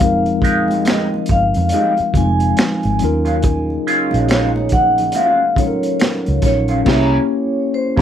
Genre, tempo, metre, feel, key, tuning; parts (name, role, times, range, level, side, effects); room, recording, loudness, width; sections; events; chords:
R&B, neo-soul; 70 BPM; 4/4; swing 59% on 16ths; F phrygian; A4 = 439 Hz
vibraphone with soft mallets; melody; 0.0-8.0 s; C5 to Ab5; -19 LUFS; left 1 dB; plate reverb, tape echo
mellow tine electric piano; accompaniment; 0.0-8.0 s; F3 to Db5; -19 LUFS; left 3 dB; auto-pan
vintage muted fingered electric bass; bass; 0.0-8.0 s; F1 to F2; -19 LUFS; right 1 dB
crunchy breakbeat drum kit; drums; 0.0-8.0 s; crash cymbal, finger snaps, hi-hat, kick drum, snare drum; -18 LUFS; right 1 dB
congas; percussion; 0.3-6.4 s; -30 LUFS; right 3 dB
electric guitar through a small old amp; second line; 0.4-8.0 s; Gb3 to Bb4; -20 LUFS; right 3 dB; wah
warm trombone section; stabs; 3.4-8.0 s; Db3 to E4; -26 LUFS; right 3 dB
moderate studio reverb, RT60 0.5 s; -13 LUFS; side -9 dB against mid
0.0-8.0 A section
band accent 6.9-8.0
0.0 Fm9; 3.0 Ebm9; 6.9 C7b9